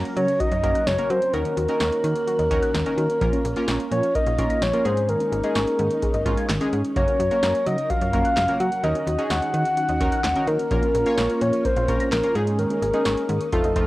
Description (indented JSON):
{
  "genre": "synth-pop",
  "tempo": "128 BPM",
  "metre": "4/4",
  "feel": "straight",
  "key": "unclear",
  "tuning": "A4 = 441 Hz",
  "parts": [
    { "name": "funky polysynth comp", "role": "accompaniment", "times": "0.0-13.9 s", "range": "Ab3 to Db5", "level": "-29 LUFS", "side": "right 1 dB", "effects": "chorus, cassette tape" },
    { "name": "ensemble organ-string", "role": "sustained chords", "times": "0.0-13.9 s", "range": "Eb3 to Bb4", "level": "-30 LUFS", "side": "equal", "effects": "ensemble chorus, cassette tape" },
    { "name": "warbly dusty pluck", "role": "arpeggios", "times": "0.0-13.9 s", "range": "Db3 to Bb6", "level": "-30 LUFS", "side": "left 1 dB", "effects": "chorus, cassette tape, analog delay" },
    { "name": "slap-like FM bass", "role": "bass", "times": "0.0-13.9 s", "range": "F1 to Gb3", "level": "-26 LUFS", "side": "equal", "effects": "none" },
    { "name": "electro analog drum machine", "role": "drums", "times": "0.1-13.9 s", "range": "handclaps, hi-hat, kick drum, snare drum", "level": "-27 LUFS", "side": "equal", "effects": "cassette tape" },
    { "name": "soft octave-layered synth lead", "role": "melody", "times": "0.2-13.9 s", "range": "Ab4 to Gb5", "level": "-23 LUFS", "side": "equal", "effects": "chorus, cassette tape" }
  ],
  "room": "moderate studio reverb, RT60 0.6 s",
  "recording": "home recording on cassette",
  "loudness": "-20 LUFS",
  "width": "side -18 dB against mid",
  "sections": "0.0-13.9 A section",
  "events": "none",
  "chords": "0.0 Gb; 1.3 Ebm7; 3.2 Bbm; 4.9 Absus4; 7.0 Gb; 8.8 Ebm7; 10.7 Bbm; 12.4 Absus4"
}